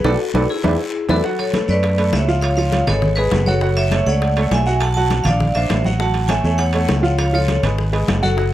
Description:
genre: latin, salsa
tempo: 202 BPM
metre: 4/4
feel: straight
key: unclear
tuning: A4 = 441 Hz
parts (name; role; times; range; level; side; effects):
- vibraphone with hard mallets; melody; 0.0-8.5 s; E4 to A5; -21 LUFS; equal; none
- clear concert grand piano; accompaniment; 0.0-8.5 s; F3 to F#5; -22 LUFS; right 3 dB; none
- fingered electric bass; bass; 0.0-8.5 s; F#1 to F#2; -18 LUFS; equal; none
- bongos; percussion; 0.0-8.5 s; none; -28 LUFS; left 6 dB; none
- congas; percussion; 0.0-8.5 s; none; -24 LUFS; left 1 dB; none
- guiro; percussion; 0.0-8.5 s; none; -34 LUFS; left 5 dB; none
- timbales; percussion; 0.0-8.2 s; none; -28 LUFS; right 6 dB; none
room: studio ambience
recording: dry, close 1970s-style studio recording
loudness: -15 LUFS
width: side -13 dB against mid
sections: 0.0-1.2 A section; 1.2-8.5 B section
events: band accent 0.0-1.2; drum fill 0.5-1.2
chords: 0.0 Bm7; 0.6 E9; 1.2 Bm9; 2.4 C#7; 3.6 F#m9; 4.8 Bm7; 5.4 Bb; 6.0 A6; 7.2 C#7

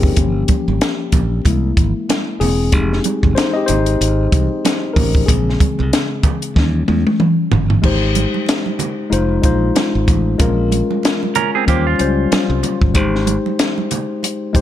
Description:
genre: lush 1970s-style soul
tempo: 94 BPM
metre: 4/4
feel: swing 58% on 16ths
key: Ab major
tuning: A4 = 441 Hz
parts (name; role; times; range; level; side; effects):
- mellow tine electric piano; accompaniment; 0.0-14.6 s; C3 to Eb5; -19 LUFS; left 4 dB; none
- modern bright fingered electric bass; bass; 0.0-14.6 s; E1 to Fb2; -18 LUFS; equal; none
- compact cocktail drum kit; drums; 0.0-14.6 s; crash cymbal, hi-hat, kick drum, snare drum, toms; -16 LUFS; equal; none
- congas; percussion; 0.2-14.6 s; none; -24 LUFS; right 9 dB; none
- semi-hollow electric guitar; riff; 11.4-12.8 s; Bb3 to Bb4; -19 LUFS; right 10 dB; none
room: small room ambience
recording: none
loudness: -14 LUFS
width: side -12 dB against mid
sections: 0.0-7.8 A section; 7.8-14.6 B section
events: tine electric piano solo 0.0-7.8; drum fill 6.6-7.8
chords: 0.2 Gm7b5; 1.4 Caug7; 2.7 Fm9 (rootless); 5.3 Bbm9; 6.6 Eb7b9; 7.8 Abmaj7; 9.1 Fm7; 10.4 Bbm7; 11.7 Eb13; 13.0 Abmaj7

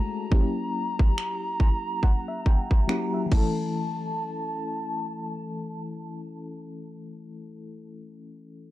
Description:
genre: contemporary R&B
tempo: 70 BPM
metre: 4/4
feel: swing 58% on 16ths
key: unclear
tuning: A4 = 440 Hz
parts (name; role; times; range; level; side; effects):
- hollow clarinet-like synth lead; melody; 0.0-6.8 s; A5 to Bb5; -33 LUFS; equal; chorus, phaser, low-pass filter, tape echo
- mellow FM electric piano; accompaniment; 0.0-8.7 s; E3 to A#5; -32 LUFS; left 2 dB; chorus, tremolo, low-pass filter
- trap drum kit; drums; 0.3-3.5 s; crash cymbal, finger snaps, kick drum; -21 LUFS; equal; none
room: digital ambience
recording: dark, warm production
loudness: -24 LUFS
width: side -15 dB against mid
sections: 0.0-3.7 A section; 3.7-7.2 B section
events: filter sweep 0.0-3.7; FM electric piano fill 1.2-3.7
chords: 0.3 F#7b9; 3.3 A

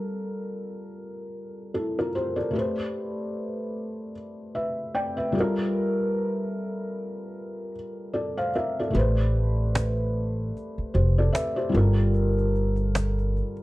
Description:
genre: lo-fi hip hop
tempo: 75 BPM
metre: 4/4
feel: swing 58% on 16ths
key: A phrygian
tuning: A4 = 440 Hz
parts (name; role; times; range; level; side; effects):
- felt-muted upright piano; accompaniment; 0.0-13.6 s; G3 to G5; -27 LUFS; equal; cassette tape
- upright bass; bass; 8.9-13.4 s; F1 to A1; -23 LUFS; equal; none
- cajon; drums; 8.9-13.6 s; none; -30 LUFS; equal; vintage 12-bit sampler grit
room: light reverb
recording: dark, warm production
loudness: -24 LUFS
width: side -18 dB against mid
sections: 0.0-8.9 A section; 8.9-13.6 B section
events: kick muted 8.9-13.6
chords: 0.0 Gm9; 2.5 Am9; 5.3 Gm9; 8.9 Am9; 11.7 Gm9

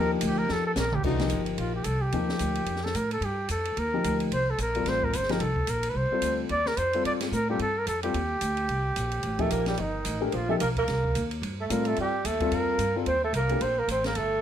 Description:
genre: modal jazz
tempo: 220 BPM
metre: 4/4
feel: swing 58% on 8ths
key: C dorian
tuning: A4 = 440 Hz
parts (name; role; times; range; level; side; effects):
- trumpet with bucket mute; melody; 0.0-14.4 s; D4 to D5; -29 LUFS; right 1 dB; plate reverb
- warm upright piano; accompaniment; 0.0-13.6 s; E3 to Bb4; -30 LUFS; left 5 dB; none
- upright bass; bass; 0.0-14.4 s; G1 to A2; -31 LUFS; right 1 dB; none
- open jazz drum kit; drums; 0.2-14.2 s; crash cymbal, hi-hat, kick drum, ride cymbal, snare drum, toms; -35 LUFS; right 1 dB; none
- mellow tenor saxophone; second line; 9.4-14.4 s; Eb3 to C4; -32 LUFS; right 6 dB; none
room: moderate club reverb, RT60 0.6 s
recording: none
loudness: -25 LUFS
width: side -10 dB against mid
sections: 0.0-1.0 A section; 1.0-14.4 B section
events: muted trumpet solo 0.0-1.0; drum fill 0.5-1.0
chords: 0.0 Cm11 (rootless); 1.0 Cm11

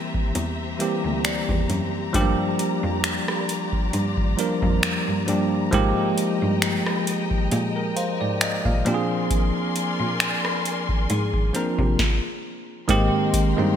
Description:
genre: contemporary R&B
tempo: 67 BPM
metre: 4/4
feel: swing 54% on 16ths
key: F dorian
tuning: A4 = 440 Hz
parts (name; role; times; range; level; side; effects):
- bell-like tine electric piano; accompaniment; 0.0-13.8 s; Eb3 to F5; -24 LUFS; right 1 dB; medium stereo tremolo
- warm studio string section; sustained chords; 0.0-13.8 s; Ab3 to C6; -31 LUFS; left 4 dB; none
- glassy synth bell; texture; 0.0-2.6, 8.0-13.8 s; F4 to F5; -36 LUFS; left 3 dB; chorus, ping-pong delay
- booming analog drum machine; drums; 0.1-13.6 s; finger snaps, hi-hat, kick drum, rim click, snare drum; -24 LUFS; equal; gated reverb
- rich cello; bass; 0.4-13.7 s; D2 to C3; -27 LUFS; equal; none
room: moderate lush hall reverb, RT60 2.7 s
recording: bright 1980s-style digital production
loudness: -20 LUFS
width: side -9 dB against mid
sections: 0.0-12.9 A section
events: stop 12.0-12.9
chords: 0.0 C7; 2.1 Gm7; 5.7 Fm11; 8.9 Bb9; 12.9 Abmaj9

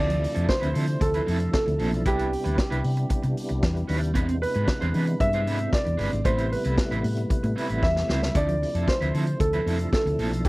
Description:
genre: disco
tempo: 114 BPM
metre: 4/4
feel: straight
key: D dorian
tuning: A4 = 440 Hz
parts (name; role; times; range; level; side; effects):
- warm concert grand piano; melody; 0.0-10.5 s; G4 to E5; -28 LUFS; right 1 dB; none
- electric guitar at the edge of break-up; accompaniment; 0.0-10.5 s; F3 to C5; -31 LUFS; right 3 dB; tremolo
- percussive tonewheel organ; sustained chords; 0.0-10.5 s; C3 to E4; -32 LUFS; left 1 dB; overdrive, chorus vibrato, slow rotary speaker
- hollow-body short-scale fingered electric bass; bass; 0.0-10.5 s; G1 to E3; -26 LUFS; equal; none
- vintage drum kit; drums; 0.1-10.5 s; hi-hat, kick drum, snare drum; -27 LUFS; equal; none
room: little or no reverb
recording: dry, close 1970s-style studio recording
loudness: -22 LUFS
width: side -21 dB against mid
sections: 0.0-10.5 A section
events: drum fill 7.8-8.3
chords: 0.0 Dm9; 2.1 Cmaj9; 4.2 E7b13; 6.3 Am9; 8.3 Dm9

